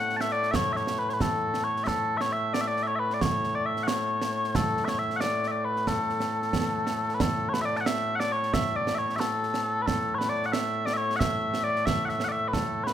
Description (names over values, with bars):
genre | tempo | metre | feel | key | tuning
scottish traditional, Scottish pipe music | 90 BPM (dotted quarters) | 6/8 | straight | A major | A4 = 440 Hz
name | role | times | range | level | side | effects
mellow small bagpipes | melody | 0.0-12.9 s | A2 to A5 | -26 LUFS | left 1 dB | none
concert snare drum and concert bass drum | drums | 0.1-12.9 s | none | -31 LUFS | right 3 dB | none
room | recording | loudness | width
moderate recital hall reverb, RT60 1.4 s | minimal, uncompressed stereo recording | -25 LUFS | side -10 dB against mid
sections
0.0-7.2 A section; 7.2-12.9 B section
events
none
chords
none